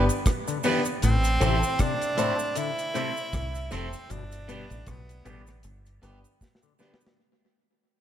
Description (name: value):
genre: roots reggae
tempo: 78 BPM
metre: 4/4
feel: swing 57% on 16ths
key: unclear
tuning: A4 = 440 Hz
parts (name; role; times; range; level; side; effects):
- electric guitar at the edge of break-up; accompaniment; 0.0-7.0 s; G3 to B4; -32 LUFS; right 4 dB; phaser, dub echo
- clear baby grand piano; stabs; 0.0-7.0 s; B3 to C5; -31 LUFS; left 3 dB; none
- deep dub fingered electric bass; bass; 0.0-6.2 s; F1 to C2; -27 LUFS; equal; none
- deep reggae drum kit; drums; 0.1-7.2 s; hi-hat, kick drum, rim click, snare drum; -28 LUFS; equal; tape echo
- cabasa; percussion; 0.1-7.2 s; none; -39 LUFS; right 4 dB; none
- mellow clav; arpeggios; 0.5-6.9 s; A2 to E3; -33 LUFS; left 6 dB; phaser
- edgy tenor saxophone; melody; 1.0-5.6 s; B3 to E4; -30 LUFS; right 1 dB; dub echo
room: moderate concert hall reverb, RT60 2.1 s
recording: none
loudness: -24 LUFS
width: side -10 dB against mid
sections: 0.0-7.2 A section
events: fade-out 0.0-7.2; drum fill 6.4-7.2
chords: 0.0 G; 1.0 Am; 4.1 G